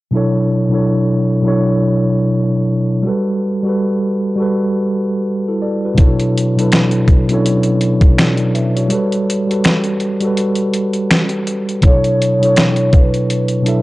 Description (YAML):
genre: lo-fi hip hop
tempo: 82 BPM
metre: 4/4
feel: swing 58% on 16ths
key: B minor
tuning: A4 = 444 Hz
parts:
  - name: mellow tine electric piano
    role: accompaniment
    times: 0.1-13.8 s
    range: B2 to E5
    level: -14 LUFS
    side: equal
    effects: medium stereo tremolo, low-pass filter
  - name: dusty soul sampler-style drum kit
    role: drums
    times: 6.0-13.8 s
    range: finger snaps, hi-hat, kick drum, snare drum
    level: -13 LUFS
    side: equal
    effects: none
  - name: vibraphone with soft mallets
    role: melody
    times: 11.8-13.8 s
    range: B4 to C#5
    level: -17 LUFS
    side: right 1 dB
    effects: low-pass filter
room: moderate spring reverb, RT60 2.4 s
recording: dry, gritty hardware recording, nothing above 10.9 kHz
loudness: -12 LUFS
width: side -19 dB against mid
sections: 0.1-11.8 A section; 11.8-13.8 B section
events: break 8.9-11.8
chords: 0.1 Bm11; 3.0 Gmaj9; 6.0 Bm11; 8.9 Gmaj9; 11.8 Bm11